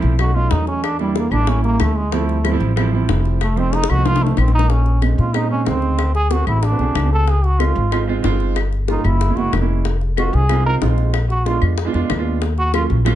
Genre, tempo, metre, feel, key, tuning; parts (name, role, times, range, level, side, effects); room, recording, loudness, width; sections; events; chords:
Afro-Cuban jazz; 186 BPM; 4/4; straight; Bb minor from 4.7 s; A4 = 439 Hz
warm upright piano; accompaniment; 0.0-13.2 s; Db3 to Cb5; -22 LUFS; right 7 dB
upright bass; bass; 0.0-13.2 s; F1 to Bb2; -17 LUFS; left 1 dB
bongos; percussion; 0.0-13.2 s; -26 LUFS; left 8 dB
trombone with metal mute; melody; 0.2-12.8 s; G3 to Bb4; -22 LUFS; right 2 dB
claves; percussion; 0.2-13.2 s; -30 LUFS; left 8 dB
light reverb; nothing above 10.3 kHz; -15 LUFS; side -12 dB against mid
0.0-4.7 A section; 4.7-13.2 A section
trombone solo 0.0-13.2; drum fill 3.7-4.7
0.2 B7; 0.8 Em7b5; 1.5 A7b9; 2.1 Dm11; 3.4 F7; 4.7 Bbm11; 6.0 D7#11; 7.3 Dbmaj9; 8.6 Gm7b5; 9.2 Gb9; 9.8 Fm7; 11.1 Bb7b9; 12.4 Ebm9